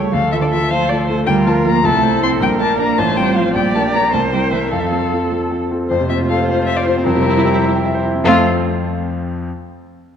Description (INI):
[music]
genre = quick classical-period movement for piano quintet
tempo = 104 BPM (dotted quarters)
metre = 6/8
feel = straight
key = F major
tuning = A4 = 440 Hz
[part]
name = muted violin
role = melody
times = 0.0-8.5 s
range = F4 to C6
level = -19 LUFS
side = left 5 dB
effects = none
[part]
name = muted cello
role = second line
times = 0.0-8.5 s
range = D3 to C4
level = -21 LUFS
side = right 6 dB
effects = none
[part]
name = muted violin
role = second line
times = 0.0-8.5 s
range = D4 to C5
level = -24 LUFS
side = left 2 dB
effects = none
[part]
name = dark baby grand piano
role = accompaniment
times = 0.0-9.5 s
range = A1 to A5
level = -18 LUFS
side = equal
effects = none
[part]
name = muted viola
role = accompaniment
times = 0.0-8.5 s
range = C4 to D5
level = -22 LUFS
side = right 4 dB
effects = none
[sound]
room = wet concert hall reverb, RT60 2.1 s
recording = dark, warm production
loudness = -14 LUFS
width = side -8 dB against mid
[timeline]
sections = 0.0-5.9 A section; 5.9-8.2 B section; 8.2-9.5 C section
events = none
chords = 0.1 Dm; 1.3 Bb/D; 1.8 Am/C; 2.4 Gmadd9/Bb (rootless); 3.0 F/A; 3.5 Gm/Bb; 4.1 C7; 4.7 F; 7.1 C7/F; 8.2 F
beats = | 0.14 0.71 | 1.28 1.85 | 2.41 2.98 | 3.55 4.12 | 4.71 5.30 | 5.89 6.47 | 7.05 7.64 | 8.25 8.85